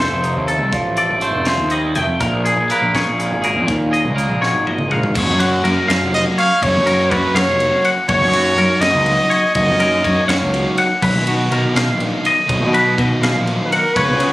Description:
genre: math rock and midwest emo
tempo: 82 BPM (dotted quarters)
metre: 6/8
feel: straight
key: B lydian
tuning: A4 = 440 Hz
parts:
  - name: twangy electric guitar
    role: accompaniment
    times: 0.0-5.1 s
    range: G#2 to C5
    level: -21 LUFS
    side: right 2 dB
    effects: none
  - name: twangy electric guitar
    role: arpeggios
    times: 0.0-14.3 s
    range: F#4 to G5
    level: -19 LUFS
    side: left 2 dB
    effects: none
  - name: fuzz picked electric bass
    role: bass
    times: 0.0-14.3 s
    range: F1 to C#3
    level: -19 LUFS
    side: equal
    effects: overdrive
  - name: crisp fusion drum kit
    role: drums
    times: 0.0-14.3 s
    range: crash cymbal, hi-hat, kick drum, ride cymbal, snare drum, toms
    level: -24 LUFS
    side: equal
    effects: none
  - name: overdriven semi-hollow guitar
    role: riff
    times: 5.1-14.3 s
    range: C#3 to F#4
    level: -21 LUFS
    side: right 1 dB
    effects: none
  - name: warm trumpet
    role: melody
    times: 6.1-10.8, 13.7-14.3 s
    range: A#4 to E#5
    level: -17 LUFS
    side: equal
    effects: none
room: little or no reverb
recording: recorded on a phone in the room, studio reverb, compression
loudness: -14 LUFS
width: side -17 dB against mid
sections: 0.0-5.2 A section; 5.2-14.3 B section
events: drum fill 4.4-5.2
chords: 0.0 F7; 2.2 A#m7; 5.2 F#maj7; 8.1 D#m7/F#; 11.0 Bmaj7

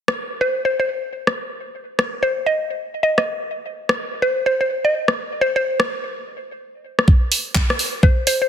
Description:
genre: bass house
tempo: 126 BPM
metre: 4/4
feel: swing 62% on 16ths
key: unclear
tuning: A4 = 439 Hz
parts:
  - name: garage drum kit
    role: drums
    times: 0.1-8.4 s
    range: handclaps, hi-hat, rim click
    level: -20 LUFS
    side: equal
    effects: soft clipping on snare
  - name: mallet-like synth pluck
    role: melody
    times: 0.4-8.5 s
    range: C5 to Eb5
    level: -20 LUFS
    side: equal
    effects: chorus, tape echo
  - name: electronic kick drum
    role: drums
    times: 7.1-8.1 s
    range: none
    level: -13 LUFS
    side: equal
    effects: overdrive
room: light reverb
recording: dense, heavily limited modern master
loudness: -17 LUFS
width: side -9 dB against mid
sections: 0.0-8.5 A section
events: none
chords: none

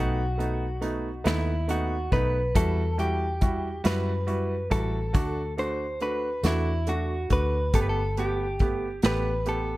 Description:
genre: six-eight pop ballad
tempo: 46 BPM (dotted quarters)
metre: 6/8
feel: straight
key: G major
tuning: A4 = 441 Hz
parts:
  - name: direct-recorded clean electric guitar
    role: melody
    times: 0.0-9.8 s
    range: E4 to C5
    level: -30 LUFS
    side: equal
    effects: spring reverb
  - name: clear concert grand piano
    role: accompaniment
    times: 0.0-9.7 s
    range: G3 to G4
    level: -31 LUFS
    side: right 2 dB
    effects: none
  - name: vintage muted fingered electric bass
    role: bass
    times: 0.0-9.8 s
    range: G1 to F#2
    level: -29 LUFS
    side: equal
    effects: none
  - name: unplugged drum kit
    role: drums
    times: 0.4-9.7 s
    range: hi-hat, kick drum, snare drum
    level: -26 LUFS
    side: equal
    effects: none
room: small room reverb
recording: none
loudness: -24 LUFS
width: side -18 dB against mid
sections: 0.0-9.8 A section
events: none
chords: 0.0 B7; 2.5 Emadd9; 5.1 D; 7.7 Gadd9

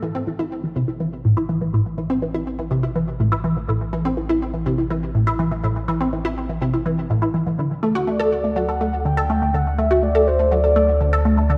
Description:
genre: ambient, sequencer-driven space music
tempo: 123 BPM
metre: 4/4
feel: straight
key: A dorian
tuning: A4 = 440 Hz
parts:
  - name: resonant blip pluck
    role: riff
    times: 0.0-11.6 s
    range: A2 to A4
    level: -22 LUFS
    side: equal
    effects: phaser, ensemble chorus, delay
  - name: warm sub bass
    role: bass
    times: 0.0-11.6 s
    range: A1 to D2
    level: -28 LUFS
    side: equal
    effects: none
  - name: mellow horn-like synth lead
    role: melody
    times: 8.1-11.2 s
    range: C5 to G5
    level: -23 LUFS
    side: equal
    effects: lush chorus, delay
room: wet concert hall reverb, RT60 2.4 s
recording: none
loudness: -21 LUFS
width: mono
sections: 0.0-11.6 A section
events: fade-in on sub bass 0.0-11.6; filter sweep on synth arpeggio sound 0.0-11.6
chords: 0.0 A5; 7.6 D5

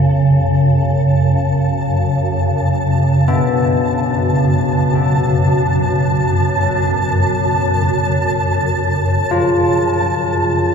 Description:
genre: dark ambient drone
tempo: free time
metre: none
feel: none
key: F# harmonic minor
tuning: A4 = 440 Hz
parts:
  - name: carillon bells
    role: arpeggios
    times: 0.0-10.7 s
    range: B2 to E#4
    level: -21 LUFS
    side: left 3 dB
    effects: ping-pong delay
  - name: swarming drone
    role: drone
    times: 0.0-10.7 s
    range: F#2 to C#3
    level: -15 LUFS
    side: equal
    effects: built-in reverb
  - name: flickering grainy texture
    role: texture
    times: 0.0-10.7 s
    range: A5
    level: -21 LUFS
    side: right 1 dB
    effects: built-in reverb
room: wet cathedral reverb, RT60 5.1 s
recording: in a vast, echoing space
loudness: -13 LUFS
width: side -6 dB against mid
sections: 0.0-10.7 A section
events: fade-in on synth texture 0.0-10.7; fade-in on church bells 0.0-10.7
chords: 0.0 F#m

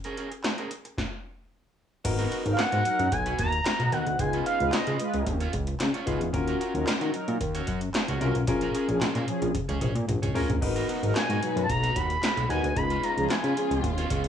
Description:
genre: early-eighties boogie funk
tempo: 112 BPM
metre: 4/4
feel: straight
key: G# dorian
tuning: A4 = 440 Hz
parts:
  - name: electric guitar at the edge of break-up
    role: riff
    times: 0.0-14.3 s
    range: B3 to C#5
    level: -36 LUFS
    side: right 6 dB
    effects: lush chorus
  - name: electro analog drum machine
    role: drums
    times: 0.0-14.3 s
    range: crash cymbal, handclaps, hi-hat, kick drum, snare drum, toms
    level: -30 LUFS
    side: equal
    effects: gated reverb
  - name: warm concert grand piano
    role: accompaniment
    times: 2.0-13.5 s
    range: B3 to B4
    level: -30 LUFS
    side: left 4 dB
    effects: none
  - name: fat analog bass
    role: bass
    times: 2.0-14.3 s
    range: G#1 to D#3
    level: -28 LUFS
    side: equal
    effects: none
  - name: expressive synth lead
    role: melody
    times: 2.5-5.2, 11.2-13.8 s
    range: D#5 to B5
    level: -28 LUFS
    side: right 1 dB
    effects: chorus, slapback echo
  - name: mellow synth brass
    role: second line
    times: 2.5-13.9 s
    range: E#3 to B4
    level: -31 LUFS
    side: equal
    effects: chorus
  - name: dark studio string section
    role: sustained chords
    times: 10.6-14.3 s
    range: A#2 to F#4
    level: -37 LUFS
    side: left 2 dB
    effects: none
room: light reverb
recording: none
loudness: -24 LUFS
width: side -8 dB against mid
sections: 0.0-2.0 A section; 2.0-14.3 B section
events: stop 1.0-2.0; drum fill 9.5-10.6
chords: 0.0 A#m7; 2.0 G#m9; 4.2 C#7; 6.3 D#m7; 8.5 A#m7; 10.6 G#m9; 12.8 C#7

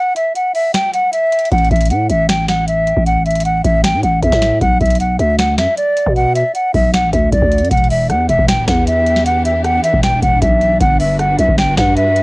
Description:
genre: hip hop, trap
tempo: 155 BPM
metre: 4/4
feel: half-time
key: unclear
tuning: A4 = 437 Hz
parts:
  - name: hollow concert flute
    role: melody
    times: 0.0-12.2 s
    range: D5 to G5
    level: -14 LUFS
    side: equal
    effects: cassette tape
  - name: booming analog drum machine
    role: drums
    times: 0.2-12.2 s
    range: finger snaps, hi-hat, kick drum, rim click, snare drum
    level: -17 LUFS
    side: equal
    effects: cassette tape
  - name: growling 808-style bass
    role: bass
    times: 1.5-12.2 s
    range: D1 to B2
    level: -16 LUFS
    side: equal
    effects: none
  - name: dark symphonic string section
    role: sustained chords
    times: 7.7-12.2 s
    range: E3 to B4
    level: -24 LUFS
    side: equal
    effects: cassette tape
room: little or no reverb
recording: home recording on cassette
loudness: -11 LUFS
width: side -24 dB against mid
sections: 0.0-7.7 A section; 7.7-12.2 B section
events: break 0.0-1.5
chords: 0.0 N.C.; 1.5 A5; 4.6 Bm; 7.7 Em7; 10.8 Gmaj7

